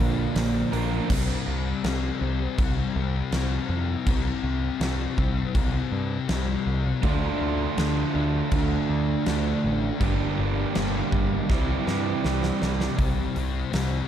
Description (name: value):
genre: rock, shoegaze and dream pop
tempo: 81 BPM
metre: 4/4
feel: straight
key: C mixolydian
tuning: A4 = 440 Hz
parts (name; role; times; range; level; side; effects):
- overdriven electric guitar; riff; 0.0-1.1, 7.0-13.0 s; G2 to Bb4; -28 LUFS; right 10 dB; reverse reverb
- thick fuzz guitar; riff; 0.0-14.1 s; G2 to D4; -28 LUFS; left 8 dB; distortion, analog chorus
- growling picked electric bass; bass; 0.0-14.0 s; G1 to G2; -28 LUFS; equal; overdrive
- huge arena drum kit; drums; 0.4-13.9 s; crash cymbal, hi-hat, kick drum, snare drum; -29 LUFS; equal; none
room: small room ambience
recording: dark, warm production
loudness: -23 LUFS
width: side -10 dB against mid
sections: 0.0-1.1 A section; 1.1-13.0 B section; 13.0-14.1 A section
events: drum fill 11.5-13.0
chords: 0.0 Bb; 1.1 C5; 7.0 Dm; 10.0 Gm; 11.5 C; 13.0 C5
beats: 0.36 | 1.10 1.84 2.58 3.33 | 4.07 4.81 5.55 6.30 | 7.04 7.78 8.53 9.27 | 10.01 10.76 11.50 12.25 | 12.99 13.74